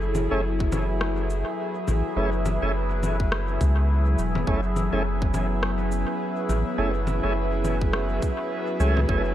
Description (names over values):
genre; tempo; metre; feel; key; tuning
ambient dub; 104 BPM; 4/4; swing 58% on 16ths; F# minor; A4 = 438 Hz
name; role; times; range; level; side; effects
warbly tape-like pad; sustained chords; 0.0-9.3 s; F#3 to B5; -28 LUFS; equal; chorus, built-in reverb, phaser
soft dub sub bass; bass; 0.0-9.3 s; E1 to C#2; -25 LUFS; equal; none
bubbling stepped-filter texture; texture; 0.5-9.3 s; B3 to B4; -36 LUFS; equal; chorus, built-in reverb
electronic congas, cabasa and rim click; drums; 0.1-9.1 s; none; -33 LUFS; left 2 dB; studio reverb, dub echo
tonewheel organ; stabs; 0.3-9.2 s; A3 to G#4; -32 LUFS; right 2 dB; slow rotary speaker, dub echo
electronic kick drum; drums; 0.6-9.2 s; none; -26 LUFS; equal; studio reverb
room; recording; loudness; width
light reverb; none; -22 LUFS; side -12 dB against mid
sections
0.0-9.3 A section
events
none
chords
0.0 F#m7